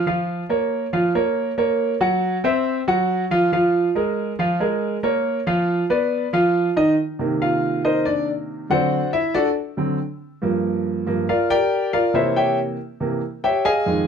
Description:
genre	jazz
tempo	139 BPM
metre	4/4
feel	straight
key	C minor from 7.0 s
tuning	A4 = 440 Hz
part	warm concert grand piano	solo	0.0-14.1 s	F2 to Ab5	-18 LUFS	equal	none
room	moderate club reverb, RT60 0.8 s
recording	none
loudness	-18 LUFS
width	side -7 dB against mid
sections	0.0-7.0 A section; 7.0-14.1 B section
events	grand piano solo 7.0-14.1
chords	0.1 Bbm/F; 1.8 Gb7#11; 2.7 F5; 3.5 Db6; 5.2 Db13b9/F; 6.1 Ebsus2; 7.0 Cm7; 8.7 D7; 10.4 Gm7; 12.1 C7b9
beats	| 0.07 0.50 0.93 1.36 | 1.80 2.23 2.66 3.09 | 3.52 3.96 4.39 4.82 | 5.25 5.68 6.11 6.54 | 6.97 7.41 7.84 8.27 | 8.70 9.13 9.56 9.99 | 10.42 10.85 11.29 11.72 | 12.15 12.58 13.01 13.44 | 13.87

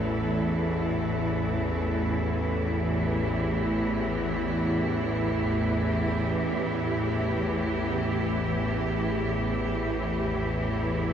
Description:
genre	dark ambient drone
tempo	free time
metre	none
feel	none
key	unclear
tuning	A4 = 440 Hz
part	rich symphonic cello section	sustained chords	0.0-11.1 s	A2 to A4	-27 LUFS	equal	none
part	bowed-like drone	drone	0.0-11.1 s	A1 to E2	-28 LUFS	equal	built-in reverb
room	wet huge ambient reverb, RT60 8.4 s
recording	none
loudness	-25 LUFS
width	side -8 dB against mid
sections	0.0-11.1 A section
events	none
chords	0.0 A5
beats	free time

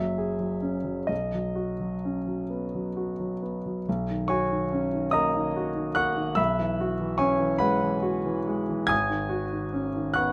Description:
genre	classical, impressionist solo piano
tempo	42-49 BPM (dotted quarters)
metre	6/8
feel	rubato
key	B major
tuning	A4 = 437 Hz
part	warm concert grand piano	solo	0.0-10.3 s	F#1 to G#6	-27 LUFS	equal	none
room	light reverb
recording	close, detailed microphones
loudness	-27 LUFS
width	mono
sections	0.0-3.9 A section; 3.9-10.3 B section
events	none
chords	0.0 F#sus2; 1.1 Badd9; 3.9 Bmaj9; 6.4 F#11/B; 8.9 G#7(no3)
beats	| 1.10 2.50 | 3.87 5.14 | 6.38 7.62 | 8.91 10.19

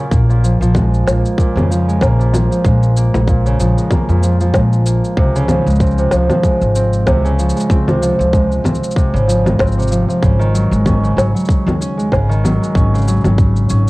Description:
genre	folktronica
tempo	95 BPM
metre	4/4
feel	swing 56% on 16ths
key	Db major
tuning	A4 = 441 Hz
part	Celtic harp	arpeggios	0.0-13.9 s	Bb2 to Db4	-16 LUFS	equal	cassette tape, analog delay
part	upright bass	bass	0.1-13.8 s	Ab1 to F2	-15 LUFS	equal	none
part	electronic cabasa, congas and snare drum	drums	0.1-13.9 s	none	-19 LUFS	left 1 dB	small room reverb, cassette tape
part	electronic kick drum	drums	0.1-13.5 s	none	-14 LUFS	equal	small room reverb, cassette tape
room	light reverb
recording	home recording on cassette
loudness	-11 LUFS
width	side -21 dB against mid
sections	0.0-13.9 A section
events	none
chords	0.1 Bbm7; 5.2 Dbmaj7; 10.2 Ab7sus4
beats	| 0.12 0.75 1.38 2.01 | 2.64 3.28 3.91 4.54 | 5.17 5.80 6.43 7.07 | 7.70 8.33 8.96 9.59 | 10.22 10.86 11.49 12.12 | 12.75 13.38

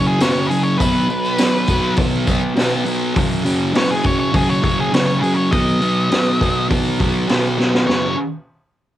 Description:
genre	garage rock duo or trio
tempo	102 BPM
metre	4/4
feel	straight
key	unclear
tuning	A4 = 440 Hz
part	octave-fuzz lead guitar	melody	0.0-8.2 s	G#4 to D#5	-21 LUFS	left 1 dB	distortion
part	thick fuzz guitar	riff	0.0-8.1 s	F#2 to B3	-18 LUFS	equal	distortion, cassette tape
part	raw garage drum kit	drums	0.2-8.0 s	hi-hat, kick drum, snare drum	-19 LUFS	equal	cassette tape
part	tambourine	percussion	0.2-2.7 s	none	-33 LUFS	left 6 dB	none
room	light reverb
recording	home recording on cassette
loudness	-15 LUFS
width	side -13 dB against mid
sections	0.0-7.9 A section; 7.9-9.0 B section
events	drum fill 7.6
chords	0.0 F#5; 0.8 B5; 3.2 F#5; 5.5 B; 7.9 F#5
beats	0.20 | 0.79 1.38 1.97 2.56 | 3.15 3.75 4.33 4.93 | 5.52 6.11 6.70 7.29 | 7.88

